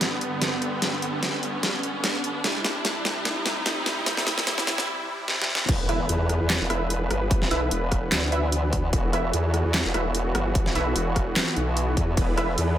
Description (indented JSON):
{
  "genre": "heavy wobble dubstep",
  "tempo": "148 BPM",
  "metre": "4/4",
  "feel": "swing 54% on 16ths, half-time",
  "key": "E minor",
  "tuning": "A4 = 443 Hz",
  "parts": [
    { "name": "supersaw chords", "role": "sustained chords", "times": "0.0-12.8 s", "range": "G2 to B4", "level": "-30 LUFS", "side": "right 1 dB", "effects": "sidechain pumping, low-pass filter" },
    { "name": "dubstep drum kit", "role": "drums", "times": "0.0-12.7 s", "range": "crash cymbal, handclaps, hi-hat, ride cymbal, rim click, snare drum", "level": "-26 LUFS", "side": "equal", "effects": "overdrive" },
    { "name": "riser and impact", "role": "sound effects", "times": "0.0-7.3 s", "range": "none", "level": "-31 LUFS", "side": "equal", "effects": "none" },
    { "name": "formant-sweep wobble bass", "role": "bass", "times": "5.7-12.8 s", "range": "E1 to E2", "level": "-25 LUFS", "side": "equal", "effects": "chorus, overdrive" },
    { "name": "electronic kick drum", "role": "drums", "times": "5.7-12.3 s", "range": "none", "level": "-25 LUFS", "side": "equal", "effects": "overdrive" },
    { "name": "orchestra-hit-like synth stab", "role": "stabs", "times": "5.9-12.5 s", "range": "E4 to E5", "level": "-31 LUFS", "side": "right 2 dB", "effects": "built-in reverb, tape echo" }
  ],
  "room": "light reverb",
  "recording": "high-pass filter",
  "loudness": "-22 LUFS",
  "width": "side -11 dB against mid",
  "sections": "0.0-5.7 A section; 5.7-12.8 B section",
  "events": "build-up 0.0-5.7; drum fill 0.0-4.9, 5.3-5.7; riser 0.0-4.9; filter sweep on supersaw synth 0.0-5.7; filter sweep 0.0-5.7; break 4.9-5.7; drop 5.7-12.8; impact 5.7-7.3",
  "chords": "0.0 G; 2.4 C; 5.7 E5"
}